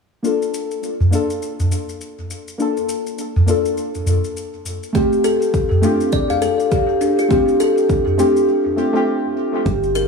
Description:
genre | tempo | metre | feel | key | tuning
organic downtempo | 102 BPM | 4/4 | swing 59% on 16ths | unclear | A4 = 441 Hz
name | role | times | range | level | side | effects
deep mellow chord stab | accompaniment | 0.2-9.7 s | A3 to A4 | -20 LUFS | left 2 dB | wide subtle chorus, sidechain pumping, tape echo
shaker | drums | 0.2-10.1 s | none | -35 LUFS | left 4 dB | overdrive, small room reverb, tape echo
udu | percussion | 1.0-8.2 s | none | -19 LUFS | right 1 dB | tape echo
electronic kick drum | drums | 4.9-9.8 s | none | -21 LUFS | equal | overdrive, small room reverb
kalimba | arpeggios | 5.0-10.1 s | D4 to F5 | -17 LUFS | left 1 dB | dub echo
woody FM bass | bass | 9.7-10.1 s | G1 | -22 LUFS | equal | none
room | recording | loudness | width
moderate plate reverb, RT60 2.8 s | echo-heavy mix, studio ambience | -16 LUFS | side -4 dB against mid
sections
0.2-9.7 A section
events
break 8.5-9.7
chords
0.2 Bbmaj7; 5.0 Fadd9

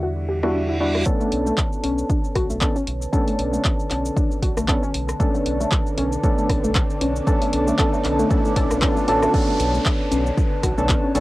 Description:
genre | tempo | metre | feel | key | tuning
deep house | 116 BPM | 4/4 | swing 56% on 16ths | B minor | A4 = 439 Hz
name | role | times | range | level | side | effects
warbly tape-like pad | sustained chords | 0.0-11.2 s | D3 to D6 | -32 LUFS | equal | chorus, built-in reverb, phaser, sidechain pumping, cassette tape
warbly dusty pluck | arpeggios | 0.0-11.1 s | A3 to G4 | -27 LUFS | left 1 dB | chorus, sidechain pumping, cassette tape, tape echo
percussive organ stab | stabs | 0.0-11.2 s | G3 to A4 | -23 LUFS | equal | analog chorus, cassette tape, sidechain pumping, tape echo
round analog bass | bass | 0.0-11.2 s | A1 to E2 | -26 LUFS | equal | sidechain pumping
reverse cymbal, riser and downlifter | sound effects | 0.3-11.2 s | none | -34 LUFS | right 1 dB | none
punchy analog drum machine | drums | 0.4-11.2 s | crash cymbal, handclaps, hi-hat, rim click, shaker | -26 LUFS | equal | overdrive, cassette tape
electronic kick drum | drums | 1.1-11.0 s | none | -22 LUFS | equal | overdrive, cassette tape
room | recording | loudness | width
moderate booth ambience, RT60 0.2 s | home recording on cassette | -18 LUFS | side -18 dB against mid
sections
0.0-1.1 A section; 1.1-9.3 B section; 9.3-11.2 C section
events
filter sweep on synth stab 0.0-1.1, 1.1-9.3; reverse cymbal 0.3-1.1; build-up 1.1-9.3; riser 1.1-9.3; filter sweep on ambient pad 1.1-9.3; drop 9.3-11.2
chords
0.0 Em9; 1.1 Bm9

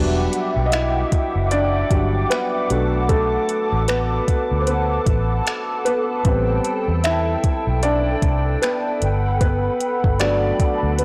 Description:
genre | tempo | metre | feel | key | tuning
contemporary R&B | 76 BPM | 4/4 | swing 58% on 16ths | E minor | A4 = 440 Hz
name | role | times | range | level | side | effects
felt-muted upright piano | accompaniment | 0.0-11.0 s | F#3 to E5 | -24 LUFS | equal | none
hollow soft pad | sustained chords | 0.0-11.0 s | A4 to D6 | -28 LUFS | equal | ensemble chorus
vintage muted fingered electric bass | bass | 0.0-11.0 s | E1 to E2 | -24 LUFS | equal | none
smooth R&B drum kit | drums | 0.3-11.0 s | finger snaps, hi-hat, kick drum | -25 LUFS | equal | soft clipping on snare
room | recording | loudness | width
light reverb, digital ambience | blown-out, overdriven recording, overdrive | -20 LUFS | mono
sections
0.0-11.0 A section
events
felt piano solo 0.0-11.0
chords
0.0 Em9; 2.7 Bm7; 6.3 Am9; 9.0 Gmaj9

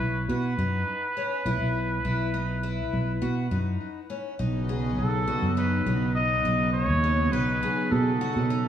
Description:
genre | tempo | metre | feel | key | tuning
progressive instrumental, progressive | 102 BPM | 5/4 | straight | B mixolydian | A4 = 440 Hz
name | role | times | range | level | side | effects
warm trumpet | melody | 0.0-8.7 s | A4 to D#5 | -29 LUFS | right 1 dB | tape echo
picked twelve-string acoustic guitar | arpeggios | 0.0-8.7 s | C#4 to G#4 | -34 LUFS | left 6 dB | tape echo
fingered electric bass | bass | 0.0-8.7 s | B1 to B2 | -27 LUFS | equal | none
airy breathy pad | accompaniment | 4.4-8.7 s | C#3 to D#4 | -28 LUFS | right 1 dB | chorus
room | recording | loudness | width
light reverb | small room reverb | -24 LUFS | side -9 dB against mid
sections
0.0-4.4 A section; 4.4-8.7 B section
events
none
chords
0.0 Bsus4; 4.4 B7

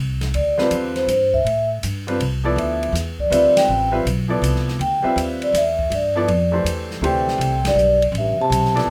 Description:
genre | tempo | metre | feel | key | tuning
modal jazz | 162 BPM | 3/4 | swing 66% on 8ths | D dorian | A4 = 440 Hz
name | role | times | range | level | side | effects
upright bass | bass | 0.0-8.9 s | A1 to A2 | -26 LUFS | equal | none
open jazz drum kit | drums | 0.2-8.9 s | hi-hat, kick drum, ride cymbal, snare drum | -33 LUFS | equal | none
vibraphone with soft mallets | melody | 0.3-8.9 s | C5 to A5 | -20 LUFS | equal | none
bright upright piano | accompaniment | 0.6-8.9 s | D3 to E5 | -26 LUFS | equal | none
mellow trombone | second line | 7.0-8.9 s | G2 to C3 | -28 LUFS | equal | none
room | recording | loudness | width
moderate studio reverb, RT60 0.5 s | none | -19 LUFS | mono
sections
0.0-8.9 A section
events
band accent 3.5, 7.6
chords
0.0 D9sus4

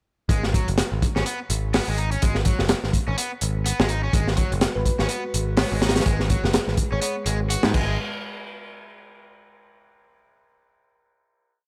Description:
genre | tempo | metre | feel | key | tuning
breakbeat, breaks | 125 BPM | 4/4 | swing 58% on 16ths | G# minor | A4 = 440 Hz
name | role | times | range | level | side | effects
crunchy overdriven guitar | riff | 0.3-8.0 s | F#3 to F#4 | -33 LUFS | equal | analog delay
modern bright picked electric bass | bass | 0.3-8.0 s | F#1 to G#2 | -27 LUFS | equal | none
crunchy breakbeat drum kit | drums | 0.3-7.9 s | crash cymbal, hi-hat, kick drum, snare drum | -25 LUFS | equal | none
dark analog pad | sustained chords | 4.1-8.0 s | G#3 to B4 | -37 LUFS | equal | chorus, sidechain pumping
thumb-piano-like synth pluck | melody | 4.8-7.1 s | B4 to C#5 | -36 LUFS | equal | chorus, AM radio sound, cassette tape, analog delay
room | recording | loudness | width
little or no reverb | dry, gritty hardware recording | -23 LUFS | mono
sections
0.3-8.0 drop; 8.0-9.9 final hit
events
drop 0.3-8.0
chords
0.3 G#m7; 8.0 N.C.

